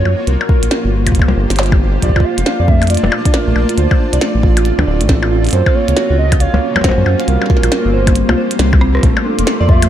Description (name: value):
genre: IDM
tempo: 137 BPM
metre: 4/4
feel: swing 62% on 16ths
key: unclear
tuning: A4 = 442 Hz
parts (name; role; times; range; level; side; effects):
- warbly nostalgic lead; melody; 0.0-9.9 s; A4 to F5; -21 LUFS; right 1 dB; wide subtle chorus, cassette tape, dub echo
- granular cloud pad; sustained chords; 0.0-9.9 s; Bb3 to A5; -20 LUFS; left 2 dB; built-in reverb
- round analog bass; bass; 0.0-9.9 s; D1 to Gb2; -14 LUFS; equal; none
- glitchy drum kit; drums; 0.1-9.9 s; hi-hat, percussion blips, rim click, snare drum; -19 LUFS; left 1 dB; none
- electronic kick drum; drums; 0.5-9.8 s; none; -12 LUFS; equal; none
- harp-like synth pluck; arpeggios; 2.2-9.9 s; G3 to F5; -19 LUFS; right 4 dB; chorus, digital delay
- flickering grainy texture; texture; 9.2-9.9 s; C6; -24 LUFS; left 2 dB; built-in reverb, sidechain pumping
room: digital ambience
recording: none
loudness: -11 LUFS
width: side -11 dB against mid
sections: 0.0-9.0 A section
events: drum fill 8.7-9.0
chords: 0.3 C7sus4; 2.0 Bbmaj7; 3.8 Dm7; 5.5 Gbmaj7; 7.3 C7sus4; 9.0 Bbmaj7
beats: | 0.27 0.71 1.15 1.59 | 2.02 2.46 2.90 3.34 | 3.78 4.21 4.65 5.09 | 5.53 5.97 6.40 6.84 | 7.28 7.72 8.15 8.59 | 9.03 9.47